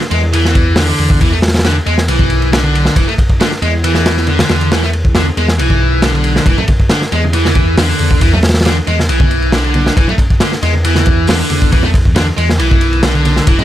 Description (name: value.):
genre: breakbeat, breaks.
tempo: 137 BPM.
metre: 4/4.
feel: straight.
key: unclear.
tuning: A4 = 443 Hz.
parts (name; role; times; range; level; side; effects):
crunchy breakbeat drum kit; drums; 0.0-13.6 s; hi-hat, kick drum, ride cymbal, snare drum; -13 LUFS; equal; none.
overdriven electric guitar; riff; 0.1-13.6 s; D3 to A3; -15 LUFS; equal; tube saturation, tape echo.
dark detuned saw bass; bass; 0.1-13.5 s; E1 to E2; -14 LUFS; equal; none.
congas; percussion; 6.6-13.6 s; none; -21 LUFS; right 1 dB; none.
room: little or no reverb.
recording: none.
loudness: -10 LUFS.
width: side -12 dB against mid.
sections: 0.0-13.6 A section.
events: none.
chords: 0.0 E7(no3).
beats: 0.34 0.77 | 1.21 1.65 2.09 2.52 | 2.96 3.40 3.84 4.28 | 4.71 5.15 5.59 6.03 | 6.47 6.91 7.34 7.78 | 8.22 8.66 9.10 9.53 | 9.97 10.41 10.85 11.28 | 11.72 12.16 12.60 13.04 | 13.47.